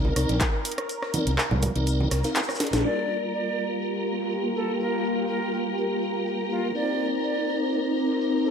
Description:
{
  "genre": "deep house",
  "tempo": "123 BPM",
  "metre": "4/4",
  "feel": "swing 54% on 16ths",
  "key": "G minor",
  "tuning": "A4 = 443 Hz",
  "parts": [
    { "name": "tonewheel organ", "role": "stabs", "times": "0.0-8.5 s", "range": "G3 to F5", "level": "-29 LUFS", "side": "equal", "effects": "chorus vibrato, fast rotary speaker, sidechain pumping, low-pass filter, ping-pong delay" },
    { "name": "overdriven fingered electric bass", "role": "bass", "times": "0.0-2.8 s", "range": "Bb1 to C2", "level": "-25 LUFS", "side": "equal", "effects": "none" },
    { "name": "congas", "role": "percussion", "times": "0.0-2.1 s", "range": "none", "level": "-30 LUFS", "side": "right 2 dB", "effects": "none" },
    { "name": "analog string pad", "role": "texture", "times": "0.0-8.5 s", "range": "Bb4 to Bb5", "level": "-36 LUFS", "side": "equal", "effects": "ensemble chorus, sidechain pumping" },
    { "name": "house drum kit", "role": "drums", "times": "0.2-2.8 s", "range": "handclaps, hi-hat, rim click, snare drum", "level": "-28 LUFS", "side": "equal", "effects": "overdrive, low-pass filter on hats, low-pass filter on snare, low-pass filter on room" },
    { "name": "shaker and snare drum", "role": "drums", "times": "0.2-8.5 s", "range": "none", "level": "-42 LUFS", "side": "left 1 dB", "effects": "none" },
    { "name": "electronic kick drum", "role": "drums", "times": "0.4-0.5 s", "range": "none", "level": "-26 LUFS", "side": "equal", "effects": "overdrive" },
    { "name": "bright silver concert flute", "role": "melody", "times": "2.8-8.5 s", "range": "F4 to D5", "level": "-31 LUFS", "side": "right 1 dB", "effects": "ping-pong delay" },
    { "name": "soft string machine", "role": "sustained chords", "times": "3.5-8.5 s", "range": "Bb3 to D6", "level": "-29 LUFS", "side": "left 1 dB", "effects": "ensemble chorus, sidechain pumping" },
    { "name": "ethereal airy pad", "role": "texture", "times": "3.7-8.5 s", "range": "Bb3 to D6", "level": "-34 LUFS", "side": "right 1 dB", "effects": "ensemble chorus, built-in reverb, sidechain pumping" }
  ],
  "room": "wet plate reverb, RT60 1.4 s, studio reverb",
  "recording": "dreamy mix soaked in reverb",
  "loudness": "-23 LUFS",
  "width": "side -7 dB against mid",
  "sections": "0.0-2.8 A section; 2.8-8.5 B section",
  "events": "kick drops out 0.9-2.8; drum fill 2.6; band accent 2.7",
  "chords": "0.0 Cm9; 2.8 Gm7; 6.7 Cm9"
}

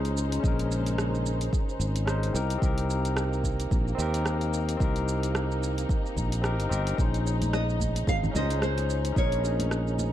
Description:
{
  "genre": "sunset chillout",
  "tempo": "110 BPM",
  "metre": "4/4",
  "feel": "swing 57% on 16ths",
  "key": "Bb dorian",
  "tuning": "A4 = 440 Hz",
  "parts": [
    { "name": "barky tine electric piano", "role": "accompaniment", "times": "0.0-10.1 s", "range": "C4 to C5", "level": "-33 LUFS", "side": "moving between left 5 dB and right 5 dB", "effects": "auto-pan, ping-pong delay" },
    { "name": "dark studio string section", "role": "sustained chords", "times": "0.0-10.1 s", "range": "Db3 to C5", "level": "-35 LUFS", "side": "left 3 dB", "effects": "none" },
    { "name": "sustaining fretless electric bass", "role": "bass", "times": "0.0-10.1 s", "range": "G1 to Eb2", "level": "-28 LUFS", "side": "equal", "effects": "none" },
    { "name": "deep house drum kit", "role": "drums", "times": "0.0-10.1 s", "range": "hi-hat, rim click, shaker", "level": "-35 LUFS", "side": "right 2 dB", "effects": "none" },
    { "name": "electronic kick drum", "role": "drums", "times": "0.4-9.3 s", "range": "none", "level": "-28 LUFS", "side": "equal", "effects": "none" },
    { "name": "congas and bongos", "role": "percussion", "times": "7.4-10.1 s", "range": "none", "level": "-36 LUFS", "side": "right 1 dB", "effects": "none" },
    { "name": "nylon-string guitar", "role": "melody", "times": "7.5-10.1 s", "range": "C5 to F5", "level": "-31 LUFS", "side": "right 1 dB", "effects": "ping-pong delay" }
  ],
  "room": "light reverb",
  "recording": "dark, warm production",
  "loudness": "-25 LUFS",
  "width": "side -12 dB against mid",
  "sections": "0.0-10.1 A section",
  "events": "none",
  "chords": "0.0 Bbm11; 2.3 Cm7; 7.0 Bbm11"
}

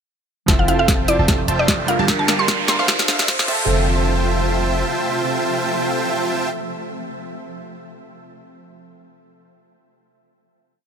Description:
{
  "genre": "future bass",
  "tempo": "150 BPM",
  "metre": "4/4",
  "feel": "swing 55% on 16ths, half-time",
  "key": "F major",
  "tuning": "A4 = 441 Hz",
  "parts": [
    { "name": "glassy digital keys", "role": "accompaniment", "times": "0.5-9.4 s", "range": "D3 to E5", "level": "-28 LUFS", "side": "right 2 dB", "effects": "chorus, sidechain pumping, dub echo" },
    { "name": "shimmering ambient pad", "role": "sustained chords", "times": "1.5-6.5 s", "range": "C3 to E5", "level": "-29 LUFS", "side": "equal", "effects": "chorus, built-in reverb, sidechain pumping" },
    { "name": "wide unison pluck", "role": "arpeggios", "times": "0.5-6.5 s", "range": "F5 to A5", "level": "-31 LUFS", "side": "right 2 dB", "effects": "none" },
    { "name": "wide unison pluck", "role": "arpeggios", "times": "0.5-3.9 s", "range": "D4 to E5", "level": "-32 LUFS", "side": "right 6 dB", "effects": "none" },
    { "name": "dense compressed supersaw", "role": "riff", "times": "0.5-6.5 s", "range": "G3 to A5", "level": "-23 LUFS", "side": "right 1 dB", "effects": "sidechain pumping, low-pass filter, dub echo" },
    { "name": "warm 808-style bass", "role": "bass", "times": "0.5-4.8 s", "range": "D1 to D2", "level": "-22 LUFS", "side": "equal", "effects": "sidechain pumping" },
    { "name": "electronic kick drum", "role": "drums", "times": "0.5-3.6 s", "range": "none", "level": "-21 LUFS", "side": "equal", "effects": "studio reverb" },
    { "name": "trap drum kit", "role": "drums", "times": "0.5-3.6 s", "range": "crash cymbal, hi-hat, snare drum", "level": "-21 LUFS", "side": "equal", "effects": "studio reverb" },
    { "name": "riser", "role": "sound effects", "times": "1.3-3.7 s", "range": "none", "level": "-26 LUFS", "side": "right 3 dB", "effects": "none" },
    { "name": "mallet-like synth pluck", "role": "melody", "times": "0.6-2.9 s", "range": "D5 to C6", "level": "-23 LUFS", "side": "equal", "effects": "chorus, cassette tape, sidechain pumping, tape echo" }
  ],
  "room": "light reverb",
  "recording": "high-pass filter",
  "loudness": "-16 LUFS",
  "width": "side -7 dB against mid",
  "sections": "0.5-3.7 build; 3.7-6.9 final hit",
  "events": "build-up 0.5-3.7; drum fill 0.5-3.7; filter sweep 0.5-3.7; riser 1.3-3.7",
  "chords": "0.5 Fmaj7; 1.9 Gm7; 2.9 Dm7; 3.5 Fmaj7"
}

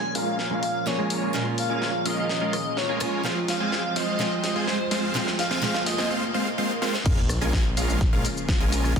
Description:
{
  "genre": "EDM, festival progressive house",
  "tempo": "126 BPM",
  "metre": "4/4",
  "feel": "straight",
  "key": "Bb minor",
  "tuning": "A4 = 440 Hz",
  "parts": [
    { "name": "airy dreamy lead", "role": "melody", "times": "0.0-6.1 s", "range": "C5 to Ab5", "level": "-30 LUFS", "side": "left 1 dB", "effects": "chorus, ping-pong delay" },
    { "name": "picked steel-string acoustic guitar", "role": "accompaniment", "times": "0.0-6.1 s", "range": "Bb2 to Ab4", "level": "-32 LUFS", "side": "right 2 dB", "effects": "sidechain pumping, ping-pong delay" },
    { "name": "lush unison pad", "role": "sustained chords", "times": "0.0-9.0 s", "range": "Db3 to C5", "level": "-33 LUFS", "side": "right 2 dB", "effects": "chorus, sidechain pumping" },
    { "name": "riser, swell and sub drop", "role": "sound effects", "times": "1.8-9.0 s", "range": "none", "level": "-35 LUFS", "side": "equal", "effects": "none" },
    { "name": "big supersaw lead", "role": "riff", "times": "0.1-9.0 s", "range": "Ab3 to Ab5", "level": "-28 LUFS", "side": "right 1 dB", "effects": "sidechain pumping, low-pass filter, ping-pong delay" },
    { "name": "big-room dance drum kit", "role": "drums", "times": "0.2-9.0 s", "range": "crash cymbal, hi-hat, rim click, shaker, snare drum", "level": "-30 LUFS", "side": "left 1 dB", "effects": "soft clipping on snare, high-pass filter on snare, studio ambience, high-pass filter on hats, high-pass filter on cymbals, high-pass filter on perc" },
    { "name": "detuned saw bass", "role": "bass", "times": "7.1-9.0 s", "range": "Bb1", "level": "-26 LUFS", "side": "equal", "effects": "sidechain pumping" },
    { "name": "electronic kick drum", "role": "drums", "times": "7.1-9.0 s", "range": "none", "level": "-23 LUFS", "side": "equal", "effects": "studio ambience" }
  ],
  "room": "light reverb",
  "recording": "dense, heavily limited modern master",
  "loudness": "-22 LUFS",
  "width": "side -6 dB against mid",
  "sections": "0.0-7.1 A section; 7.1-9.0 B section",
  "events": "build-up 0.0-7.1; drum fill 0.0-6.1, 6.8; filter sweep on supersaw synth 0.0-7.1; riser 1.8-6.1; swell 6.1-7.1; drop 7.1-9.0; impact 7.1-9.0",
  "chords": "0.0 Bbm7; 3.2 Fm; 7.1 Bbm7"
}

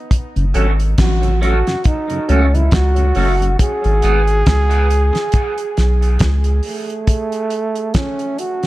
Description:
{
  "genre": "dub reggae",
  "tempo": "69 BPM",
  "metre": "4/4",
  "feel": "swing 57% on 16ths",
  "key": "unclear",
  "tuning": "A4 = 440 Hz",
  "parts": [
    { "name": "damped 70s drum kit", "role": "drums", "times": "0.1-8.7 s", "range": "hi-hat, kick drum, snare drum", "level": "-18 LUFS", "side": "equal", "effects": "none" },
    { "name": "mellow tonewheel organ", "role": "accompaniment", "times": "0.4-3.5 s", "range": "F#2 to C#4", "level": "-26 LUFS", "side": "equal", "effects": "chorus vibrato, slow rotary speaker, dub echo" },
    { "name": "soft dub sub bass", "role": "bass", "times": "0.4-6.6 s", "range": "F#1 to C#2", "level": "-14 LUFS", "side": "equal", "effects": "none" },
    { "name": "electric guitar through a small old amp", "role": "accompaniment", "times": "0.5-4.2 s", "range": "G#3 to A4", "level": "-25 LUFS", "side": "right 2 dB", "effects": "phaser, dub echo" },
    { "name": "breathy trombone", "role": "melody", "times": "1.0-8.7 s", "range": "A3 to G#4", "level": "-20 LUFS", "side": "right 2 dB", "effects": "dub echo" }
  ],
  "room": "small room reverb",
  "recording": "echo-heavy mix",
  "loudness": "-13 LUFS",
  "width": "side -17 dB against mid",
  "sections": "0.0-8.7 A section",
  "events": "none",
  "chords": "0.1 F#m; 3.6 G#m; 7.1 N.C."
}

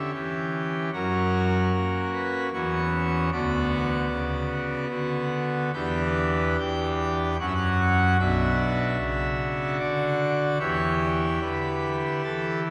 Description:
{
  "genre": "classical, chorale-style piece for pipe organ",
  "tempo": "74 BPM",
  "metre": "3/4",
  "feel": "uneven beats, rubato",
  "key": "B minor",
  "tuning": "A4 = 440 Hz",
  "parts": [
    { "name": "pipe organ, full organ", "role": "solo", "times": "0.0-12.7 s", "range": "B1 to G5", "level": "-26 LUFS", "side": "equal", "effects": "none" }
  ],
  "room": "wet cathedral reverb, RT60 4.1 s",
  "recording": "none",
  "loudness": "-26 LUFS",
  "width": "mono",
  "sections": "0.0-12.7 A section",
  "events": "none",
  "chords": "0.0 C#dim; 0.9 F#; 2.5 F#5/E; 3.3 Bm/D; 5.7 Em7; 7.4 F#5; 8.2 Bm; 10.6 Em"
}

